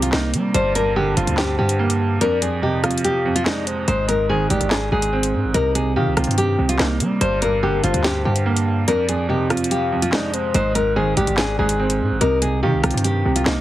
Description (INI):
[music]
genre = hip hop, drill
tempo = 144 BPM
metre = 4/4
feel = half-time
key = C minor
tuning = A4 = 441 Hz
[part]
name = nylon-string guitar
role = melody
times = 0.0-13.6 s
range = Eb4 to C5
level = -22 LUFS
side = left 2 dB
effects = low-pass filter
[part]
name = soft octave-layered synth lead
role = second line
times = 0.0-13.4 s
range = Bb4 to G5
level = -28 LUFS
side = left 3 dB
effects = chorus, phaser, tape echo
[part]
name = clear grand piano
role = accompaniment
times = 0.0-13.6 s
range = F2 to C4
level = -22 LUFS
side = right 4 dB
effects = low-pass filter
[part]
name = hard-hitting 808-style bass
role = bass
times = 0.0-13.6 s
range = G1 to G3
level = -23 LUFS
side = equal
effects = none
[part]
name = drill drum kit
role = drums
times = 0.0-13.6 s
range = handclaps, hi-hat, rim click, snare drum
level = -23 LUFS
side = equal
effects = none
[sound]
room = small room ambience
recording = heavily compressed radio sound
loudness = -17 LUFS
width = side -14 dB against mid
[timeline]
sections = 0.0-3.9 A section; 3.9-13.6 A section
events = kick muted 2.2-3.9, 8.9-10.5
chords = 0.0 Cm7; 0.5 Gm; 2.2 Fm; 3.9 Ab; 5.5 Cm7; 7.2 Gm; 8.9 Fm; 10.5 Ab; 12.2 Cm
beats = 0.13 | 0.54 0.96 1.38 1.79 | 2.21 2.63 3.04 3.46 | 3.88 4.29 4.71 5.13 | 5.54 5.96 6.38 6.79 | 7.21 7.63 8.04 8.46 | 8.88 9.29 9.71 10.13 | 10.54 10.96 11.38 11.79 | 12.21 12.63 13.04 13.46